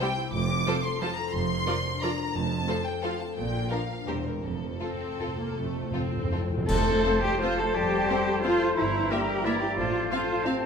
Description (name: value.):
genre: classical, orchestral ballroom waltz.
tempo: 149-193 BPM.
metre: 3/4.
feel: rubato.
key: F major.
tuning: A4 = 441 Hz.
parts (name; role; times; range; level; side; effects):
rich studio violin section; melody; 0.0-10.5 s; A4 to D6; -34 LUFS; left 1 dB; none.
rich studio violin section; second line; 0.0-10.5 s; F4 to F5; -37 LUFS; left 2 dB; none.
rich studio viola section; accompaniment; 0.0-10.6 s; F3 to F4; -36 LUFS; right 2 dB; none.
concert harp; arpeggios; 0.0-10.7 s; E2 to Bb4; -33 LUFS; left 7 dB; none.
dark studio double bass section; bass; 0.3-10.0 s; E1 to F2; -34 LUFS; right 4 dB; none.
rich studio cello section; bass; 0.3-10.7 s; E2 to A4; -30 LUFS; right 2 dB; none.
timpani; percussion; 0.3-0.8, 4.4-7.2 s; F2; -34 LUFS; equal; none.
cymbal swell, clash cymbals and concert bass drum; percussion; 4.4-7.4 s; none; -34 LUFS; right 1 dB; none.
bright flute section; second line; 6.7-10.7 s; A5 to Bb5; -35 LUFS; left 1 dB; none.
clear clarinet; second line; 6.7-10.7 s; C5 to E5; -35 LUFS; left 1 dB; none.
clear oboe; second line; 6.7-10.7 s; Bb4 to D5; -33 LUFS; right 3 dB; none.
mellow French horn section; sustained chords; 6.7-10.7 s; C3 to A3; -32 LUFS; left 4 dB; none.
room: wet recital hall reverb, RT60 1.3 s.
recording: minimal, uncompressed stereo recording.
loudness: -25 LUFS.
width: side -6 dB against mid.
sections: 0.0-6.7 A section; 6.7-10.7 B section.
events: timpani fill 4.4-6.7; band accent 6.7-7.1.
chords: 0.3 F; 1.3 Bb/F; 2.3 F; 3.4 Bb; 4.1 C7/E; 4.4 F; 8.8 Edim/G; 9.8 F/A.